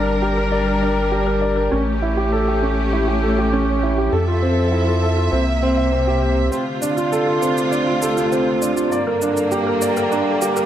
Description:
piano and strings electronica; 100 BPM; 4/4; straight; D minor; A4 = 440 Hz
rich studio string section; sustained chords; 0.0-10.7 s; D2 to E5; -22 LUFS; left 1 dB
warm baby grand piano; riff; 0.0-10.7 s; C4 to E5; -19 LUFS; right 1 dB; tape echo
round analog bass; bass; 0.0-6.5 s; G1 to F2; -21 LUFS; equal
shaker; drums; 6.5-10.7 s; -30 LUFS; equal; high-pass filter on perc
moderate lush hall reverb, RT60 2.1 s; dark, warm production, high-pass filter; -16 LUFS; side -11 dB against mid
0.0-6.5 A section; 6.5-10.7 B section
build-up 6.5-10.7
0.0 Gm; 1.7 A7; 4.1 Fmaj7; 5.3 C7; 6.5 Dm7; 8.9 Gm

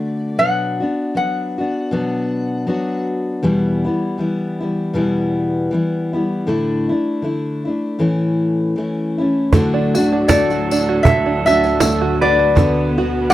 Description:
acoustic folk duo or small band; 79 BPM; 4/4; swing 56% on 8ths; D major; A4 = 439 Hz
lap resonator guitar; melody; 0.0-3.1, 10.3-13.3 s; D5 to F#5; -17 LUFS; left 1 dB
picked steel-string acoustic guitar; accompaniment; 0.0-13.3 s; E2 to F#4; -18 LUFS; left 1 dB
rich studio string section; sustained chords; 9.5-13.3 s; D2 to B3; -24 LUFS; right 1 dB
open-back banjo; arpeggios; 9.5-13.3 s; D3 to F#4; -22 LUFS; right 6 dB
cajon; percussion; 9.5-13.1 s; -14 LUFS; right 2 dB
tambourine; percussion; 9.5-12.7 s; -29 LUFS; left 5 dB
pedal steel guitar; second line; 10.3-13.3 s; A4 to B4; -24 LUFS; right 6 dB
little or no reverb; dry, close 1970s-style studio recording; -15 LUFS; side -14 dB against mid
0.0-9.5 A section; 9.5-13.3 B section
0.4 Bm; 3.4 Em; 6.5 Asus4; 8.0 A; 9.5 D; 12.6 Bm/D

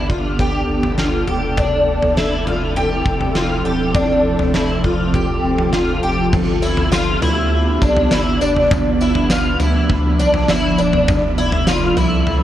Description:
dream pop; 101 BPM; 4/4; straight; G mixolydian; A4 = 440 Hz
ethereal airy pad; sustained chords; 0.0-12.4 s; F3 to A4; -20 LUFS; right 1 dB; ensemble chorus, built-in reverb
picked twelve-string acoustic guitar; arpeggios; 0.0-12.4 s; D4 to G4; -19 LUFS; left 1 dB; ensemble chorus, tape echo
saturated sub bass; bass; 0.0-12.4 s; E1 to D2; -22 LUFS; equal; tube saturation
huge arena drum kit; drums; 0.1-12.4 s; crash cymbal, kick drum, snare drum, tambourine, toms; -20 LUFS; equal
glassy synth bell; texture; 2.2-4.1 s; A4; -34 LUFS; left 2 dB
light reverb, small room ambience; worn, warbling old tape, cassette tape, warbly pitch drift; -14 LUFS; side -12 dB against mid
0.0-6.3 A section; 6.3-12.4 B section
0.0 G; 1.6 Fmaj7; 6.3 G; 11.1 Fmaj7

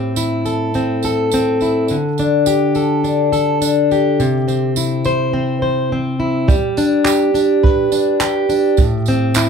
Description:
acoustic pop; 104 BPM; 4/4; straight; G major; A4 = 440 Hz
fingerpicked plugged-in steel-string acoustic guitar; accompaniment; 0.0-9.5 s; A2 to C5; -14 LUFS; left 1 dB
tambourine; percussion; 0.2-9.5 s; -28 LUFS; right 9 dB
jazz brush drum kit; drums; 6.5-9.5 s; handclaps, kick drum, tambourine; -17 LUFS; right 2 dB
moderate small room ambience, RT60 0.5 s; -14 LUFS; side -6 dB against mid
0.0-6.5 A section; 6.5-9.5 B section
0.0 Am; 1.9 Dsus4; 4.2 C; 6.5 G; 8.8 Am

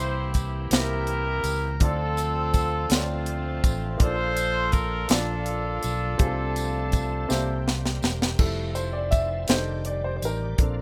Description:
slow gospel; 55 BPM (dotted quarters); 6/8; straight; F major; A4 = 439 Hz
clear horn section; melody; 0.0-7.7 s; A3 to C5; -30 LUFS; equal; slapback echo
warm upright piano; accompaniment; 0.0-10.8 s; Bb2 to E5; -35 LUFS; equal
bright tonewheel organ; sustained chords; 0.0-10.8 s; Eb3 to D5; -42 LUFS; equal
fingered electric bass; bass; 0.0-10.8 s; E1 to D2; -31 LUFS; equal
tight funk drum kit; drums; 0.3-10.8 s; crash cymbal, hi-hat, kick drum, snare drum; -25 LUFS; equal
tambourine; percussion; 0.4-10.6 s; -41 LUFS; equal
little or no reverb; rough home demo mix; -25 LUFS; mono
0.0-8.4 A section; 8.4-10.8 B section
drum fill 7.3-8.4; upright piano solo 8.4-10.8
0.0 C7; 1.8 Dm7; 4.0 Bbmaj7; 6.2 F/C; 7.3 C7; 8.4 Fmaj7; 9.5 F13

